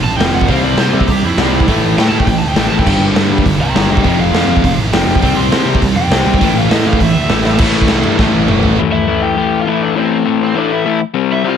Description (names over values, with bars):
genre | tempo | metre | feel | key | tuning
punk rock | 203 BPM | 4/4 | straight | unclear | A4 = 440 Hz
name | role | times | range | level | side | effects
lead guitar through a small cranked amp | melody | 0.0-11.6 s | C4 to C6 | -19 LUFS | right 1 dB | overdrive
crunchy overdriven guitar | riff | 0.0-11.6 s | F2 to C4 | -16 LUFS | left 10 dB | none
distorted electric guitar | riff | 0.0-8.8 s | F2 to C4 | -19 LUFS | right 15 dB | distortion
high-gain distorted guitar | riff | 0.0-8.8 s | F2 to C4 | -20 LUFS | right 4 dB | distortion
fuzz picked electric bass | bass | 0.0-8.8 s | E1 to C3 | -18 LUFS | right 1 dB | overdrive
raw garage drum kit | drums | 0.2-8.7 s | crash cymbal, hi-hat, kick drum, snare drum, toms | -15 LUFS | right 1 dB | none
room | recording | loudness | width
little or no reverb | none | -10 LUFS | side -8 dB against mid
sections
0.0-7.6 A section; 7.6-8.8 B section; 8.8-11.6 C section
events
lead electric guitar solo 0.0-7.6; drum fill 7.5, 8.2-8.8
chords
0.5 C; 1.7 A5; 2.9 G5; 4.0 F5; 5.2 C5; 6.4 A5; 7.6 Am; 11.0 C